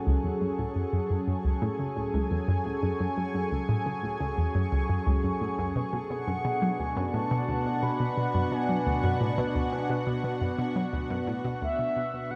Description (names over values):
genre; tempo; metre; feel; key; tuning
ambient, sequencer-driven space music; 87 BPM; 4/4; straight; B dorian; A4 = 440 Hz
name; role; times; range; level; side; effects
lush unison pad; sustained chords; 0.0-12.4 s; B2 to G#5; -33 LUFS; equal; chorus, shimmer reverb
analog pluck; riff; 0.0-12.4 s; C#2 to F#3; -32 LUFS; equal; chorus, tape echo
bubbling stepped-filter texture; texture; 0.0-12.4 s; C#6; -46 LUFS; equal; chorus, built-in reverb, shimmer reverb
mellow horn-like synth lead; melody; 6.1-12.4 s; E5 to B5; -36 LUFS; equal; chorus, shimmer reverb, tape echo
room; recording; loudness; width
wet plate reverb, RT60 2.5 s; echo-heavy mix; -29 LUFS; mono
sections
0.0-12.4 A section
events
fade-in on synth texture 0.0-12.4; filter sweep on synth arpeggio sound 0.0-12.4; fade-out 9.4-12.4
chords
0.0 F#m; 5.8 Bm